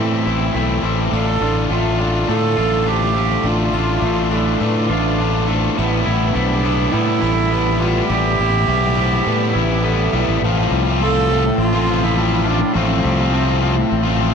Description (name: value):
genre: post-rock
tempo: 103 BPM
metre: 4/4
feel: straight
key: unclear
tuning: A4 = 442 Hz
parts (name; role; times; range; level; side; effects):
- warm cello; melody; 0.0-13.9 s; B3 to A4; -22 LUFS; right 4 dB; tape echo
- twangy electric guitar; arpeggios; 0.0-14.3 s; A2 to F4; -28 LUFS; left 4 dB; tape echo
- vibraphone with medium hard mallets; arpeggios; 0.0-10.4 s; A4 to E5; -30 LUFS; right 7 dB; tape echo
- distorted electric guitar; riff; 0.0-14.3 s; A2 to F4; -19 LUFS; left 2 dB; distortion
- growling fingered electric bass; bass; 0.0-14.3 s; A1 to A2; -20 LUFS; equal; overdrive
room: light reverb, small room ambience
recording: nothing above 10.3 kHz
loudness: -15 LUFS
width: side -6 dB against mid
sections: 0.0-10.4 A section; 10.4-14.3 B section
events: build-up 0.0-10.4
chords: 0.0 Am7; 1.1 Dm/A; 5.8 Em/A; 10.4 Fadd9/A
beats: 0.56 | 1.14 1.72 2.30 2.88 | 3.45 4.03 4.61 5.19 | 5.77 6.35 6.93 7.51 | 8.09 8.67 9.25 9.84 | 10.42 11.00 11.58 12.16 | 12.74 13.33 13.91